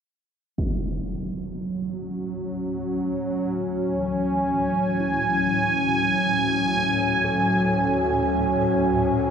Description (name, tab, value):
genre	dark ambient drone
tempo	free time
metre	none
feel	none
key	unclear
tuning	A4 = 439 Hz
part	sweeping resonant pad	sustained chords	0.6-9.3 s	F#3 to G#5	-22 LUFS	equal	chorus, shimmer reverb
part	swarming drone	drone	1.9-9.3 s	D2 to A2	-32 LUFS	equal	built-in reverb
part	impact	percussion	0.6-0.8 s	none	-32 LUFS	equal	low-pass filter on sfx
part	gamelan-type bronze metallophone	arpeggios	4.0-9.3 s	E3 to A4	-35 LUFS	left 3 dB	none
room	wet huge ambient reverb, RT60 8.0 s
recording	none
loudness	-21 LUFS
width	side -7 dB against mid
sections	0.6-9.3 A section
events	fade-in on synth drone 0.6-9.3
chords	0.6 F#madd9